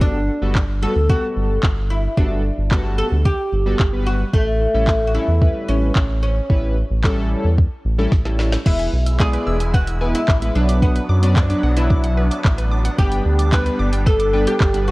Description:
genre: dance-pop.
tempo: 111 BPM.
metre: 4/4.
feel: straight.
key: unclear.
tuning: A4 = 440 Hz.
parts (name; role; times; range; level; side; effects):
oud; melody; 0.0-14.9 s; A3 to B4; -23 LUFS; equal; none.
chorused polysynth; accompaniment; 0.0-14.9 s; F#3 to D5; -24 LUFS; left 1 dB; sidechain pumping.
round analog bass; bass; 0.0-14.9 s; E1 to F#2; -19 LUFS; equal; sidechain pumping.
smooth R&B drum kit; drums; 0.0-14.9 s; crash cymbal, handclaps, hi-hat, kick drum, snare drum; -17 LUFS; equal; none.
filtered supersaw swell; sustained chords; 8.7-14.9 s; F#3 to E4; -28 LUFS; right 1 dB; sidechain pumping.
mallet-like synth pluck; arpeggios; 8.7-14.4 s; B4 to E6; -32 LUFS; right 1 dB; chorus, sidechain pumping, digital delay.
room: little or no reverb.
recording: worn, warbling old tape, cassette tape, warbly pitch drift.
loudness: -15 LUFS.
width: side -21 dB against mid.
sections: 0.0-8.7 A section; 8.7-14.9 B section.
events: drum fill 8.1-8.7.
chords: 0.0 Gmaj9; 4.3 A7; 8.7 E; 10.6 Bm; 13.0 G.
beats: | 0.01 0.55 1.09 1.63 | 2.17 2.71 3.25 3.79 | 4.34 4.88 5.42 5.96 | 6.50 7.04 7.58 8.12 | 8.66 9.20 9.74 10.28 | 10.82 11.36 11.90 12.44 | 12.98 13.53 14.06 14.61.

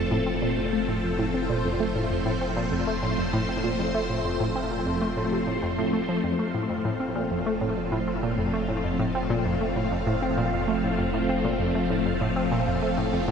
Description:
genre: ambient, sequencer-driven space music.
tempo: 98 BPM.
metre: 4/4.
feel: straight.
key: F major.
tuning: A4 = 440 Hz.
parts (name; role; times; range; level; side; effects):
phased string machine; sustained chords; 0.0-13.3 s; F3 to C5; -26 LUFS; equal; ensemble chorus, phaser, shimmer reverb.
analog pluck; riff; 0.0-13.3 s; F2 to C4; -27 LUFS; equal; chorus, ping-pong delay, shimmer reverb.
warm sub bass; bass; 0.0-13.3 s; F1; -35 LUFS; equal; none.
room: wet huge ambient reverb, RT60 7.1 s.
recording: dreamy mix soaked in reverb.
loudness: -24 LUFS.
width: side -7 dB against mid.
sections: 0.0-6.2 A section; 6.2-13.3 B section.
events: filter sweep on synth arpeggio sound 0.0-6.2.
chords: 0.0 F.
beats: 0.12 0.73 | 1.34 1.96 2.57 3.18 | 3.79 4.40 5.02 5.63 | 6.24 6.85 7.47 8.08 | 8.69 9.30 9.91 10.53 | 11.14 11.75 12.36 12.98.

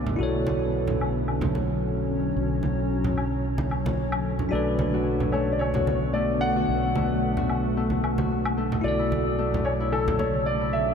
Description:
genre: sunset chillout.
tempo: 111 BPM.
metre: 4/4.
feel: swing 54% on 16ths.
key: unclear.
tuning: A4 = 440 Hz.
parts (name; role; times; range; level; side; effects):
bell-like tine electric piano; accompaniment; 0.0-10.9 s; D4 to D5; -32 LUFS; equal; auto-pan, tape echo.
shimmering ambient pad; sustained chords; 0.0-10.9 s; C#3 to C#4; -29 LUFS; left 1 dB; chorus, built-in reverb.
fretless electric bass; bass; 0.0-10.9 s; B1; -29 LUFS; right 1 dB; none.
congas; percussion; 0.1-10.3 s; none; -32 LUFS; right 2 dB; none.
woodblock; drums; 1.0-10.0 s; none; -38 LUFS; left 3 dB; low-pass filter on snare, low-pass filter on perc, low-pass filter on room.
warm concert grand piano; melody; 4.5-10.9 s; A4 to F#5; -29 LUFS; left 1 dB; tape echo.
Celtic harp; arpeggios; 4.5-10.9 s; A3 to F#4; -30 LUFS; left 4 dB; tape echo.
room: wet cathedral reverb, RT60 6.2 s.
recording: dreamy mix soaked in reverb.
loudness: -23 LUFS.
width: side -6 dB against mid.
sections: 0.0-10.9 A section.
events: filter sweep on drum 0.0-10.9.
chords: 0.2 Dmaj9/B; 4.5 Bm7; 8.8 Dmaj9/B.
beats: | 0.20 0.74 1.28 1.82 | 2.36 2.90 3.44 3.98 | 4.52 5.06 5.60 6.14 | 6.69 7.23 7.77 8.31 | 8.85 9.39 9.93 10.47.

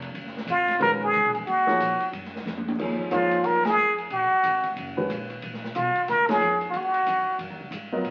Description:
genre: modal jazz.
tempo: 182 BPM.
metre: 4/4.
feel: swing 62% on 8ths.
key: Eb minor.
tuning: A4 = 445 Hz.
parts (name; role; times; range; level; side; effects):
upright bass; bass; 0.0-8.1 s; F1 to Bb2; -42 LUFS; equal; none.
open jazz drum kit; drums; 0.0-8.1 s; crash cymbal, hi-hat, kick drum, ride cymbal, snare drum, toms; -37 LUFS; equal; none.
trumpet with plunger mute; melody; 0.5-7.4 s; F4 to Bb4; -24 LUFS; equal; none.
warm baby grand piano; accompaniment; 0.8-8.1 s; Eb3 to Eb5; -31 LUFS; equal; none.
room: wet large studio reverb, RT60 1.3 s.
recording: very old 78 rpm record, vinyl crackle, nothing above 7.5 kHz.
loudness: -24 LUFS.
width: mono.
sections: 0.0-8.1 A section.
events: drum fill 2.5-2.8; band accent 3.6, 6.2.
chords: 0.0 Ebm9.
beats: | 0.14 0.47 0.81 1.14 | 1.47 1.80 2.13 2.46 | 2.79 3.12 3.45 3.78 | 4.11 4.44 4.76 5.09 | 5.42 5.75 6.08 6.41 | 6.74 7.07 7.40 7.73 | 8.06.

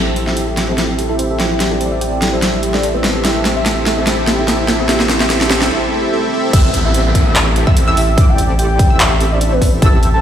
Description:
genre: future bass.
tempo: 146 BPM.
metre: 4/4.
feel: swing 54% on 16ths, half-time.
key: A minor.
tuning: A4 = 440 Hz.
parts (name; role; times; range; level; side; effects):
soft octave-layered synth lead; melody; 0.0-10.2 s; B4 to A5; -22 LUFS; equal; chorus, phaser, sidechain pumping, ping-pong delay.
soft supersaw; riff; 0.0-10.2 s; C4 to E5; -18 LUFS; equal; sidechain pumping, low-pass filter.
saturated sub bass; bass; 0.0-10.2 s; A1; -18 LUFS; equal; sidechain pumping.
riser, swell and downlifter; sound effects; 0.0-9.8 s; none; -25 LUFS; equal; none.
thumb-piano-like synth pluck; arpeggios; 0.1-5.7 s; G4 to G5; -27 LUFS; right 2 dB; none.
big-room dance drum kit; drums; 0.2-10.1 s; crash cymbal, handclaps, hi-hat, snare drum; -17 LUFS; equal; none.
wide unison pluck; arpeggios; 6.5-10.2 s; D6 to E6; -24 LUFS; right 1 dB; sidechain pumping.
electronic kick drum; drums; 6.5-9.9 s; none; -12 LUFS; equal; none.
room: moderate lush hall reverb, RT60 1.8 s, digital ambience.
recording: played on a big sound system in a bare room, stone room reverb.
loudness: -12 LUFS.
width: side -10 dB against mid.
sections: 0.0-6.5 A section; 6.5-10.2 B section.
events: build-up 0.0-6.5; drum fill 0.0-5.7; filter sweep on supersaw synth 0.0-6.5; filter sweep on soft synth lead 0.0-6.5; break 5.7-6.5; swell 5.7-6.5; drop 6.5-10.2.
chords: 0.0 Am7.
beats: 0.37 0.78 1.19 | 1.60 2.01 2.42 2.83 | 3.25 3.66 4.07 4.48 | 4.89 5.30 5.71 6.12 | 6.53 6.94 7.36 7.77 | 8.18 8.59 9.00 9.41 | 9.82.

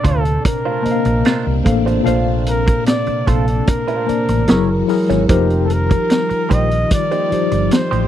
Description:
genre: lush 1970s-style soul.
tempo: 74 BPM.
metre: 4/4.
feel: straight.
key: Bb major.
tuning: A4 = 439 Hz.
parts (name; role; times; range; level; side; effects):
breathy flugelhorn; melody; 0.0-8.1 s; A4 to Eb5; -21 LUFS; right 1 dB; tape echo.
mellow tine electric piano; accompaniment; 0.0-8.1 s; Bb2 to A5; -19 LUFS; left 5 dB; medium stereo tremolo.
phased string machine; sustained chords; 0.0-8.1 s; C3 to Gb4; -25 LUFS; right 1 dB; ensemble chorus, phaser.
clean electric guitar; riff; 0.0-8.1 s; A3 to Db5; -23 LUFS; right 7 dB; wah.
hollow-body short-scale fingered electric bass; bass; 0.0-8.1 s; F1 to D2; -18 LUFS; right 1 dB; none.
vintage drum kit; drums; 0.0-8.1 s; hi-hat, kick drum, snare drum; -16 LUFS; equal; none.
room: small room reverb.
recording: dry, close 1970s-style studio recording.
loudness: -14 LUFS.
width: side -11 dB against mid.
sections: 0.0-8.1 A section.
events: none.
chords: 0.0 Bbmaj9; 4.5 Gb9; 5.3 F9sus4.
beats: 0.44 1.25 | 2.06 2.87 3.67 4.48 | 5.29 6.10 6.91 7.72.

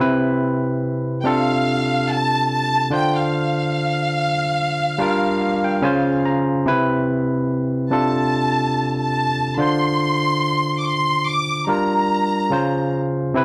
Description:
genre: soul.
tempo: 72 BPM.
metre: 4/4.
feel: swing 54% on 16ths.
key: unclear.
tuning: A4 = 441 Hz.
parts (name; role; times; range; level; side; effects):
barky tine electric piano; accompaniment; 0.0-13.4 s; C3 to Bb5; -22 LUFS; equal; overdrive.
warm studio violin section; melody; 1.2-12.9 s; F5 to D6; -24 LUFS; equal; none.
room: little or no reverb.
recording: dry, close 1970s-style studio recording.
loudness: -20 LUFS.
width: mono.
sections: 0.0-13.4 A section.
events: tine electric piano fill 5.0-6.7.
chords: 0.0 Cmaj7; 1.2 F6/C; 2.9 Dm7; 5.0 Gm7; 5.8 Dbmaj7; 6.7 Cmaj7; 7.9 F6/C; 9.6 Dm7; 11.7 Gm7; 12.5 Dbmaj7.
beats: 0.83 1.66 2.49 | 3.33 4.16 5.00 5.83 | 6.66 7.50 8.33 9.17 | 10.00 10.84 11.67 12.51 | 13.34.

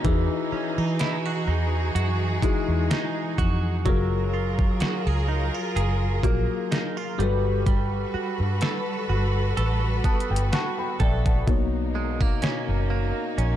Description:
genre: contemporary R&B.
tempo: 63 BPM.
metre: 4/4.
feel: swing 54% on 16ths.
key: unclear.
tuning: A4 = 440 Hz.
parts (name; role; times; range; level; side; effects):
felt-muted upright piano; accompaniment; 0.0-13.6 s; B2 to C#6; -30 LUFS; left 8 dB; none.
rich studio string section; sustained chords; 0.0-13.6 s; B2 to B4; -31 LUFS; equal; none.
direct-recorded clean electric guitar; arpeggios; 0.0-13.6 s; E3 to A4; -31 LUFS; right 10 dB; analog chorus, tape echo.
vintage muted fingered electric bass; bass; 0.0-13.6 s; F#1 to E3; -24 LUFS; equal; none.
detuned 8-bit digital drum machine; drums; 0.0-13.6 s; hi-hat, kick drum, snare drum; -24 LUFS; equal; overdrive.
room: digital ambience.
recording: dark, warm production.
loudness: -22 LUFS.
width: side -11 dB against mid.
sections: 0.0-13.6 A section.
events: felt piano fill 9.6-11.5.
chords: 0.0 Emaj9; 3.9 F#maj9; 7.2 Gmaj9; 11.5 Bmaj9.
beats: | 0.05 1.00 1.95 2.90 | 3.86 4.81 5.76 6.71 | 7.67 8.62 9.57 10.52 | 11.47 12.43 13.38.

